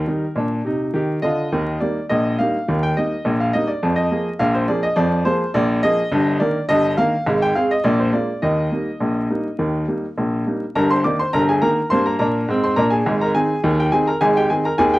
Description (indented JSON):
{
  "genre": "ragtime piano",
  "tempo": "104 BPM",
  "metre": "2/4",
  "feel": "straight",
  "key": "Eb major",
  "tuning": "A4 = 437 Hz",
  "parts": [
    { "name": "clear upright piano", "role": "solo", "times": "0.0-15.0 s", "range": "G1 to D6", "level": "-17 LUFS", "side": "equal", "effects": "none" }
  ],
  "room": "moderate club reverb, RT60 0.8 s",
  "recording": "dark, warm production, vinyl crackle",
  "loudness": "-17 LUFS",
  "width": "side -18 dB against mid",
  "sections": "0.0-10.8 A section; 10.8-15.0 B section",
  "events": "none",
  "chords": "0.4 Bb; 1.5 Eb; 3.8 Bb5; 6.1 Eb/G; 7.3 Ab; 7.8 Bb7; 8.4 Eb; 10.8 Eb/G; 13.1 Ab",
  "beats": "| 0.37 0.94 | 1.52 2.10 | 2.68 3.25 | 3.82 4.40 | 4.97 5.55 | 6.12 6.69 | 7.27 7.85 | 8.43 9.01 | 9.60 10.18 | 10.76 11.34 | 11.91 12.49 | 13.06 13.64 | 14.22 14.79"
}